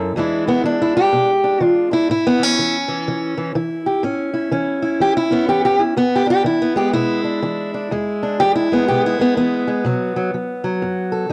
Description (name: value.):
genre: acoustic country blues, solo or duo.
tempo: 124 BPM.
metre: 4/4.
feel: swing 62% on 8ths.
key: E mixolydian.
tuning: A4 = 440 Hz.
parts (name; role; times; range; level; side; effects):
fingerpicked steel-string acoustic guitar; solo; 0.0-11.3 s; E2 to A4; -18 LUFS; equal; none.
room: light reverb, studio ambience.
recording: home recording on cassette.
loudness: -18 LUFS.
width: mono.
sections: 0.0-11.3 A section.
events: none.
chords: 0.2 E7; 2.1 A7; 6.0 E7; 9.8 B7(no3).